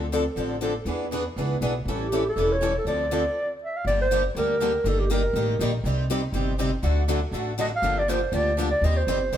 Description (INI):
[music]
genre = acoustic string swing (jazz manouche)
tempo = 242 BPM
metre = 4/4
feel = swing 57% on 8ths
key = D minor, G minor from 3.9 s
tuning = A4 = 440 Hz
[part]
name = picked steel-string acoustic guitar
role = accompaniment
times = 0.0-9.4 s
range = C3 to C5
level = -28 LUFS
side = left 4 dB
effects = none
[part]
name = picked swing-style acoustic guitar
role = accompaniment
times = 0.0-9.4 s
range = C3 to C5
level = -32 LUFS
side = right 5 dB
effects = none
[part]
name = upright bass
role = bass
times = 0.0-9.4 s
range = E1 to E2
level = -27 LUFS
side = equal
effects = none
[part]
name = breathy clarinet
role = melody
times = 2.0-9.4 s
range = G4 to F5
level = -24 LUFS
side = right 1 dB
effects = none
[sound]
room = moderate stone room reverb, RT60 1.3 s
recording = band playing live in one room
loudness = -22 LUFS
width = side -10 dB against mid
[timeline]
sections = 0.0-3.9 A section; 3.9-9.4 B section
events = stop 3.4-3.9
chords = 0.0 Dm7; 0.9 E7; 1.9 A7; 2.9 Dm7; 3.9 Gm; 4.9 Eb/G; 5.8 Cm; 6.8 D; 7.8 Gm7; 8.8 Eb6